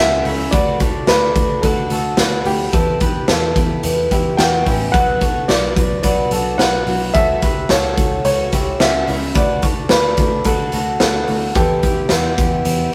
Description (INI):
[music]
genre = jangly indie pop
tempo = 109 BPM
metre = 4/4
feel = straight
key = unclear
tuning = A4 = 438 Hz
[part]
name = warm upright piano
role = melody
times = 0.0-12.9 s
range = G4 to G5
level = -22 LUFS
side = equal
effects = none
[part]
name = picked twelve-string acoustic guitar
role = accompaniment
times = 0.0-12.9 s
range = B2 to G4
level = -26 LUFS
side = equal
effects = none
[part]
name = electric guitar through a small old amp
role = arpeggios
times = 0.0-12.9 s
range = B3 to D5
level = -25 LUFS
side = equal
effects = none
[part]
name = vintage muted picked electric bass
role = bass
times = 0.0-12.9 s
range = A1 to E2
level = -26 LUFS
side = equal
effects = none
[part]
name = raw garage drum kit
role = drums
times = 0.2-12.8 s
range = hi-hat, kick drum, snare drum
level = -20 LUFS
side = equal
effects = none
[sound]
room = light reverb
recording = rough rehearsal-room recording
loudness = -16 LUFS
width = mono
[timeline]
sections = 0.0-12.9 A section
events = none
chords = 0.0 F#m7/C#; 0.5 Dadd9; 2.7 Em; 4.9 Bm; 7.2 F#m7/C#; 9.4 Dadd9; 11.6 Em